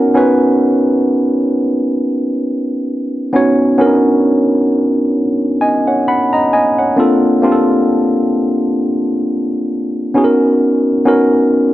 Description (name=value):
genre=R&B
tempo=66 BPM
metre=4/4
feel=swing 56% on 16ths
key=B major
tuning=A4 = 440 Hz
part: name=tine electric piano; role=solo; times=0.0-11.7 s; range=A#3 to B5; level=-11 LUFS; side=equal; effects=overdrive
room=moderate plate reverb, RT60 2.9 s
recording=none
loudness=-11 LUFS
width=side -15 dB against mid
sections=0.0-11.7 A section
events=none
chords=0.0 Bmaj9; 7.0 A#maj9; 10.2 Bmaj9